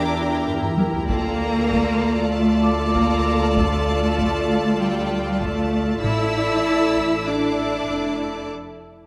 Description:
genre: cinematic, suspense film score.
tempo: 97 BPM.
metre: 4/4.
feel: straight.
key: D minor.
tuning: A4 = 440 Hz.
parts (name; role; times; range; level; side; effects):
rich studio violin section; melody; 0.0-8.5 s; G5 to E6; -35 LUFS; equal; none.
rich studio violin section; second line; 0.0-8.5 s; Bb4 to Bb5; -31 LUFS; equal; none.
rich studio viola section; accompaniment; 0.0-8.5 s; E4 to A4; -29 LUFS; equal; none.
pulsing gated texture; sustained chords; 0.0-8.5 s; E4 to A5; -34 LUFS; equal; chorus, built-in reverb.
rich studio cello section; bass; 0.0-8.5 s; G3 to E4; -25 LUFS; equal; none.
rich studio double bass section; bass; 0.0-8.5 s; F1 to E2; -29 LUFS; equal; none.
taiko ensemble; drums; 0.5-7.3 s; none; -31 LUFS; equal; none.
vibraphone with medium hard mallets; texture; 2.6-8.5 s; E5 to E6; -33 LUFS; equal; none.
timpani; percussion; 6.0-6.9 s; A2; -30 LUFS; equal; none.
room: moderate scoring stage reverb, RT60 1.8 s.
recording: none.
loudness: -21 LUFS.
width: mono.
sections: 0.0-9.1 A section.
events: drum fill 0.5-1.1; break 8.5-9.1.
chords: 0.0 Edim; 1.1 Dm; 6.0 Asus4; 8.5 N.C..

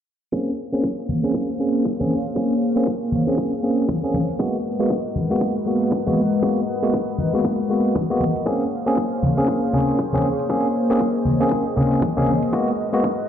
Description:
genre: deep house.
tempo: 118 BPM.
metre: 4/4.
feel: swing 59% on 16ths.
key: Bb minor.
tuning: A4 = 443 Hz.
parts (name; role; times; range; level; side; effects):
warm analog pad; sustained chords; 0.3-13.3 s; Ab3 to Gb5; -24 LUFS; left 1 dB; chorus, sidechain pumping.
barky tine electric piano; stabs; 0.3-13.1 s; Ab3 to Ab4; -21 LUFS; equal; medium stereo tremolo, sidechain pumping, low-pass filter, tape echo.
electronic hi-hat; drums; 0.3-13.2 s; none; -60 LUFS; equal; none.
electronic kick drum; drums; 0.3-13.2 s; none; -26 LUFS; equal; high-pass filter on kick, high-pass filter on room.
congas; percussion; 1.1-12.4 s; none; -24 LUFS; left 1 dB; none.
room: moderate plate reverb, RT60 1.6 s, digital ambience.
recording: played on a big sound system in a bare room, stone room reverb, low-pass filter.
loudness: -18 LUFS.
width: side -9 dB against mid.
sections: 0.3-13.3 A section.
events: filter sweep on tine electric piano 0.3-13.3; filter sweep 0.3-13.3.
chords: 0.3 Bbm9; 4.4 Abm9; 8.5 Bbm9; 12.5 Abm9.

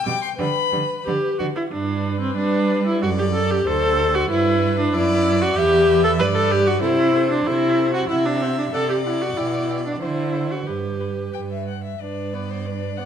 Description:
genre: quick classical-period movement for string quartet.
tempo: 93 BPM.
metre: 2/4.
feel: rubato.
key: G major.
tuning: A4 = 444 Hz.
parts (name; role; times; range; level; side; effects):
rich violin; melody; 0.0-13.1 s; A4 to D6; -31 LUFS; left 8 dB; none.
warm violin; second line; 0.0-13.1 s; B4 to G5; -27 LUFS; left 3 dB; none.
rich viola; accompaniment; 0.1-13.1 s; G3 to B4; -20 LUFS; equal; none.
rich cello; bass; 0.1-13.1 s; D2 to G3; -24 LUFS; right 5 dB; none.
room: moderate recital hall reverb, RT60 1.6 s.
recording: none.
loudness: -18 LUFS.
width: side -8 dB against mid.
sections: 0.0-1.7 A section; 1.7-12.0 B section; 12.0-13.1 C section.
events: none.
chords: 0.4 G; 1.1 Em7/D (rootless); 1.7 G; 3.0 D7/F#; 4.3 G; 5.6 Em; 6.8 Am/C (rootless); 8.1 D7/C; 9.4 G/B; 10.0 D9; 10.7 G.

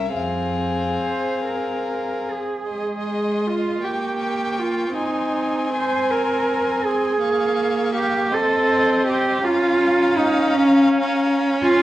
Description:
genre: classical, slow romantic movement for string quartet.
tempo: 46-56 BPM (dotted quarters).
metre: 6/8.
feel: rubato.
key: unclear.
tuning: A4 = 440 Hz.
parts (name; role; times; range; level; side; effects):
warm violin; melody; 0.0-11.8 s; E5 to Db6; -31 LUFS; left 7 dB; none.
rich violin; second line; 0.0-11.8 s; Ab4 to Ab5; -27 LUFS; left 2 dB; none.
warm viola; accompaniment; 0.0-11.8 s; Ab3 to Db4; -24 LUFS; equal; none.
warm cello; bass; 0.0-11.8 s; C2 to C5; -20 LUFS; right 2 dB; none.
room: moderate recital hall reverb, RT60 1.4 s.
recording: worn, warbling old tape, cassette tape, warbly pitch drift.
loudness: -18 LUFS.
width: side -14 dB against mid.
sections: 0.0-2.7 A section; 2.7-11.8 B section.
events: none.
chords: 0.2 Fm; 2.7 Ab; 3.9 Gdim/Bb; 5.0 Ab/C; 7.2 Bbm7; 8.4 Adim/C; 9.5 Bbm/Db.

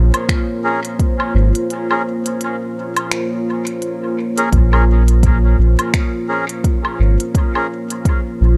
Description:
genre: ambient dub.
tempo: 85 BPM.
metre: 4/4.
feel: swing 57% on 16ths.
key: Bb minor.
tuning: A4 = 438 Hz.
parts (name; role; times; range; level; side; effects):
deep dark ambient pad; sustained chords; 0.0-8.6 s; Bb3 to Db5; -24 LUFS; equal; chorus, built-in reverb.
round analog bass; bass; 0.0-8.6 s; Ab1 to Bb1; -14 LUFS; equal; tube saturation.
organic electronic drum kit; drums; 0.1-8.2 s; finger snaps, hi-hat, woodblock; -26 LUFS; equal; dub echo.
electronic kick drum; drums; 0.3-8.2 s; none; -19 LUFS; equal; overdrive.
melodica; stabs; 0.6-7.7 s; Db4 to Bb4; -26 LUFS; equal; dub echo.
room: light reverb.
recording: echo-heavy mix.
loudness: -17 LUFS.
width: mono.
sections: 0.0-8.6 A section.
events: break 1.7-4.5.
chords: 0.0 Bbm7.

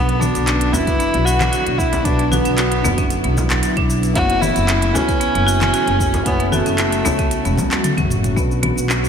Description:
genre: organic downtempo.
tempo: 114 BPM.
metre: 4/4.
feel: straight.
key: B minor.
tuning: A4 = 439 Hz.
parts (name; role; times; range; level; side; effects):
clear kamancheh; melody; 0.0-8.1 s; A3 to F#4; -21 LUFS; equal; vintage 12-bit sampler grit, ping-pong delay.
felt-muted upright piano; accompaniment; 0.0-9.1 s; D3 to C#5; -27 LUFS; left 1 dB; sidechain pumping, ping-pong delay.
bowed-like drone; sustained chords; 0.0-9.1 s; C#3 to F#4; -24 LUFS; right 1 dB; built-in reverb, sidechain pumping.
marimba with hard mallets; arpeggios; 0.0-9.1 s; F#3 to B4; -24 LUFS; equal; ping-pong delay.
upright bass; bass; 0.0-9.1 s; E1 to C#2; -21 LUFS; equal; tube saturation, sidechain pumping.
organic electronic drum kit; drums; 0.1-9.1 s; cabasa, congas, handclaps, hi-hat, toms; -23 LUFS; left 1 dB; none.
frame drum; percussion; 0.7-7.7 s; none; -27 LUFS; left 1 dB; none.
electronic kick drum; drums; 0.9-8.5 s; none; -22 LUFS; equal; none.
room: moderate lush hall reverb, RT60 2.2 s.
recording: dreamy mix soaked in reverb.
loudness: -15 LUFS.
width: side -7 dB against mid.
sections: 0.0-8.4 A section.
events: drum fill 7.6-8.4.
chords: 0.0 Bm; 4.2 F#m7; 8.4 Bm.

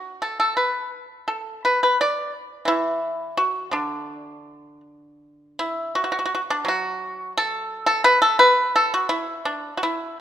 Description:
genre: chinese traditional, Chinese solo plucked strings.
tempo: 84 BPM.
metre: 2/4.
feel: rubato.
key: D gong mode.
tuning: A4 = 440 Hz.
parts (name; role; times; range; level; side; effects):
pipa; solo; 0.0-10.2 s; D3 to D5; -20 LUFS; equal; none.
room: moderate recital hall reverb, RT60 1.9 s.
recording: minimal, uncompressed stereo recording.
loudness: -20 LUFS.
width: side -10 dB against mid.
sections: 0.0-5.2 A section; 5.2-10.2 B section.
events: none.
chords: none.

